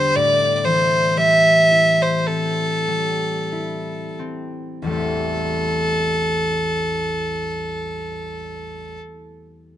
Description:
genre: celtic folk, Celtic slow air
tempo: 43-62 BPM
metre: 4/4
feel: rubato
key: A minor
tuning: A4 = 436 Hz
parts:
  - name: warm fiddle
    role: melody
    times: 0.0-9.0 s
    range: A4 to E5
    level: -18 LUFS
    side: right 1 dB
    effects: none
  - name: concert harp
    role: accompaniment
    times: 0.0-9.1 s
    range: A1 to E4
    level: -25 LUFS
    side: left 2 dB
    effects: none
room: light reverb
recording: nothing above 10.6 kHz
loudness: -17 LUFS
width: side -12 dB against mid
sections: 0.0-4.9 A section; 4.9-9.8 B section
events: slowing down 0.0-4.9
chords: 0.2 Am7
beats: | 0.16 1.17 2.27 3.52 | 4.88 6.24 7.57 8.90

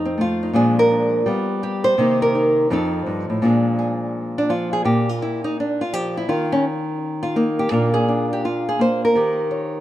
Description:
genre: solo jazz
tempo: 167 BPM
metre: 4/4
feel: swing 65% on 8ths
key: Bb mixolydian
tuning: A4 = 440 Hz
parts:
  - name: nylon-string guitar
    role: solo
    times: 0.0-9.8 s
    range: F2 to Db5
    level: -18 LUFS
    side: equal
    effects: none
room: moderate plate reverb, RT60 3.0 s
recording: none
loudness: -17 LUFS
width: side -13 dB against mid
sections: 0.0-3.4 A section; 3.4-9.8 A section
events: nylon-string guitar solo 0.0-3.4, 3.4-9.8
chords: 0.0 F7; 0.5 Bb7; 1.3 G7; 2.0 Cm7; 2.7 F7; 3.4 Bb7; 6.3 Eb5; 7.7 Bb7; 9.1 Eb7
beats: 0.18 | 0.54 0.90 1.26 1.62 | 1.98 2.33 2.69 3.05 | 3.41 3.77 4.13 4.49 | 4.84 5.20 5.56 5.92 | 6.28 6.64 6.99 7.35 | 7.71 8.07 8.43 8.78 | 9.14 9.50

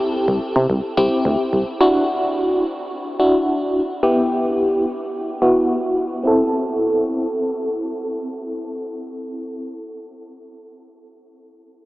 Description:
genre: synth-pop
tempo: 108 BPM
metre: 4/4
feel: straight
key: A dorian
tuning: A4 = 440 Hz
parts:
  - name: FM electric piano with tremolo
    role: accompaniment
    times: 0.0-9.9 s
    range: B3 to A4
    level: -18 LUFS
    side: equal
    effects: phaser, low-pass filter
  - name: solid FM bass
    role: bass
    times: 0.3-1.6 s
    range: C2 to C3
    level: -18 LUFS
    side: equal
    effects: none
room: wet huge ambient reverb, RT60 7.9 s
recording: dreamy mix soaked in reverb, small speaker sound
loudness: -17 LUFS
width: side -18 dB against mid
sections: 0.0-6.3 A section; 6.3-8.5 B section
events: filter sweep on FM electric piano 0.0-6.3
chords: 0.0 C; 1.8 Dadd9; 4.0 Em; 6.3 Am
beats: 0.14 0.70 1.25 | 1.81 2.36 2.92 3.47 | 4.03 4.58 5.14 5.70 | 6.25 6.81 7.36 7.92

